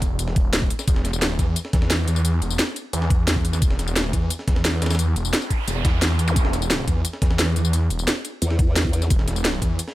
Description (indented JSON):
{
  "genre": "dark technical drum and bass",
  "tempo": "175 BPM",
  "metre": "4/4",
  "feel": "straight",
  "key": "unclear",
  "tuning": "A4 = 440 Hz",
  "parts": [
    { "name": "snarling distorted saw bass", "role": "bass", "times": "0.0-9.8 s", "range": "E1 to E2", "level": "-22 LUFS", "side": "equal", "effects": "distortion, sidechain pumping" },
    { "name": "breakbeat sampler-style drum kit", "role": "drums", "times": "0.0-9.9 s", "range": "ride cymbal, snare drum", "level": "-32 LUFS", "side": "equal", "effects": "high-pass filter on cymbals, high-pass filter on snare" },
    { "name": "drum and bass drum kit", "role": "drums", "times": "0.0-9.9 s", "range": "hi-hat, snare drum, tambourine", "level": "-24 LUFS", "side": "equal", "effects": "none" },
    { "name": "electronic kick drum", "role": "drums", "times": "0.0-9.7 s", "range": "none", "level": "-21 LUFS", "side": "equal", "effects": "overdrive" },
    { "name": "noise sweep and zap", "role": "sound effects", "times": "5.3-6.4 s", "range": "none", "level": "-30 LUFS", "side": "right 2 dB", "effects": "none" },
    { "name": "formant-sweep wobble bass", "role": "bass", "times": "8.4-9.1 s", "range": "E2", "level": "-21 LUFS", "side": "equal", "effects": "chorus" }
  ],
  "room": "digital ambience",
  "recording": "none",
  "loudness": "-19 LUFS",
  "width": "side -16 dB against mid",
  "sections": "0.0-9.9 A section",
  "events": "noise sweep 5.3-6.4; kick drops out 6.0-6.4",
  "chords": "none"
}